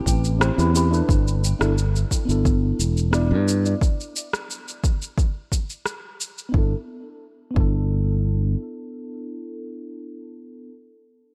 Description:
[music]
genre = sunset chillout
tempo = 88 BPM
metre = 4/4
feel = straight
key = G major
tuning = A4 = 444 Hz
[part]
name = nylon-string guitar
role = melody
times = 0.0-0.7 s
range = G4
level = -42 LUFS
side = equal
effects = digital delay
[part]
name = mellow FM electric piano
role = accompaniment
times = 0.0-10.7 s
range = B3 to D5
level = -30 LUFS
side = equal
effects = chorus, phaser, digital delay
[part]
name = fingered electric bass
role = bass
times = 0.1-8.5 s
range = E1 to G2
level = -23 LUFS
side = equal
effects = none
[part]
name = electronic kick drum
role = drums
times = 0.1-7.8 s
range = none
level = -23 LUFS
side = equal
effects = small room ambience
[part]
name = electronic shaker and rim click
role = drums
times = 0.1-6.5 s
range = none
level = -31 LUFS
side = equal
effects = small room ambience
[sound]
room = light reverb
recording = dark, warm production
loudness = -22 LUFS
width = mono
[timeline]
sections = 0.0-1.1 A section; 1.1-6.5 B section; 6.5-9.3 C section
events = none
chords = 0.0 Am7; 1.1 G69; 3.8 N.C.; 6.5 G69

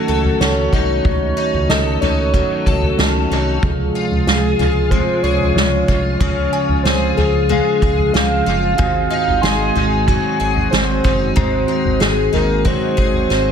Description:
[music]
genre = dream pop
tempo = 93 BPM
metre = 4/4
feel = straight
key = Db major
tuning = A4 = 445 Hz
[part]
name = soft octave-layered synth lead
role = melody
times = 0.0-13.5 s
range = Ab4 to Ab5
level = -20 LUFS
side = equal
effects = chorus, tape echo
[part]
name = mellow tonewheel organ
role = sustained chords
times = 0.0-13.5 s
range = C3 to Gb4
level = -22 LUFS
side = right 3 dB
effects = slow rotary speaker
[part]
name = picked twelve-string acoustic guitar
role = arpeggios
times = 0.0-13.5 s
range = Ab2 to A4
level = -22 LUFS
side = left 4 dB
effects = ensemble chorus, tape echo
[part]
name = round analog bass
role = bass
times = 0.1-13.5 s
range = Gb1 to Db2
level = -21 LUFS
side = equal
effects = none
[part]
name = soft-mallet drum kit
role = drums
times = 0.2-13.4 s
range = kick drum, snare drum, toms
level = -20 LUFS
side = equal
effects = tape echo
[part]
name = celesta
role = texture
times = 4.3-12.3 s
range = F5 to C6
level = -30 LUFS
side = right 3 dB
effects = tape echo
[sound]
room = moderate plate reverb, RT60 2.1 s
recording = echo-heavy mix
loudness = -14 LUFS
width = side -7 dB against mid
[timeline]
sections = 0.0-13.5 A section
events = drum fill 13.3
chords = 0.0 Gbm6; 3.6 Dbmaj7; 8.8 Ab7

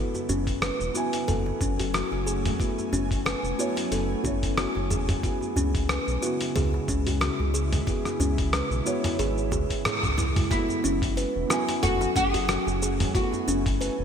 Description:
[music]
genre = organic downtempo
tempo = 91 BPM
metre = 4/4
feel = swing 55% on 16ths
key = F# minor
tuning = A4 = 440 Hz
[part]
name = felt-muted upright piano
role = accompaniment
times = 0.0-14.0 s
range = A3 to G#5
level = -33 LUFS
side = right 3 dB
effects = sidechain pumping, digital delay
[part]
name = ethereal airy pad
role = sustained chords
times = 0.0-14.0 s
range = C#3 to G#5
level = -34 LUFS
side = equal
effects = ensemble chorus, built-in reverb, sidechain pumping
[part]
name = kalimba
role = arpeggios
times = 0.0-14.0 s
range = C#4 to B4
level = -30 LUFS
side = left 2 dB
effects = digital delay
[part]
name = dusty soul sampler-style drum kit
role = drums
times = 0.1-14.0 s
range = hi-hat, rim click, shaker, toms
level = -30 LUFS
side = equal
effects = gated reverb
[part]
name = djembe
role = percussion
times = 0.1-14.0 s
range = none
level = -37 LUFS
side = right 2 dB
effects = none
[part]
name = round analog bass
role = bass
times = 0.3-14.0 s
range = E1 to C#2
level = -29 LUFS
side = equal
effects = none
[part]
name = electronic kick drum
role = drums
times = 0.5-13.8 s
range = none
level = -29 LUFS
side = equal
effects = none
[part]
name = oud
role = melody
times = 10.5-13.8 s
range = E4 to G#4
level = -29 LUFS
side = equal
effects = ping-pong delay
[sound]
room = moderate lush hall reverb, RT60 3.0 s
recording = bright 1980s-style digital production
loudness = -23 LUFS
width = side -7 dB against mid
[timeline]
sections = 0.0-10.5 A section; 10.5-14.0 B section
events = drum fill 9.5-10.5; band accent 9.8-10.2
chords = 0.0 F#madd9; 5.2 C#m7; 10.5 F#madd9

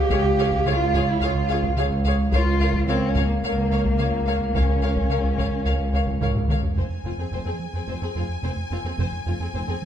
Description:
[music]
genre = cinematic, hybrid orchestral and electronic film score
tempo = 108 BPM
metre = 4/4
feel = straight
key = F minor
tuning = A4 = 439 Hz
[part]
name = mellow French horn section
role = sustained chords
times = 0.0-6.5 s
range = Ab3 to F5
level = -29 LUFS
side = left 2 dB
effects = none
[part]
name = round analog bass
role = riff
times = 0.0-9.8 s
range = Db2 to F3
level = -28 LUFS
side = right 1 dB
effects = none
[part]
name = rich chamber double bass section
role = bass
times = 0.0-9.6 s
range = F1 to Db2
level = -27 LUFS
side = right 2 dB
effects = none
[part]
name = saturated sub bass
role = bass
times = 0.0-6.7 s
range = Db2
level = -27 LUFS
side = left 1 dB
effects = none
[part]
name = warm chamber cello section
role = bass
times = 0.0-9.7 s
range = F2 to G4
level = -28 LUFS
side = right 1 dB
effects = none
[part]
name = rich studio violin section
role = second line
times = 0.1-9.7 s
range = F4 to F5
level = -33 LUFS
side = left 3 dB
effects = none
[part]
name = warm symphonic viola section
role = accompaniment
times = 0.1-9.7 s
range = C4 to Db5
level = -31 LUFS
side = equal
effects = none
[part]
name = taiko ensemble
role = drums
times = 0.1-7.8 s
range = none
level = -28 LUFS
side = left 1 dB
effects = none
[part]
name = warm symphonic violin section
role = melody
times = 6.8-9.8 s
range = Ab5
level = -35 LUFS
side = left 4 dB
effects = none
[sound]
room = moderate scoring stage reverb, RT60 1.5 s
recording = none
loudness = -20 LUFS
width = side -9 dB against mid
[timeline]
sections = 0.0-6.8 A section; 6.8-9.8 B section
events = drum fill 6.2-6.8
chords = 0.0 Db; 2.3 Bbm/Db; 6.8 Fm

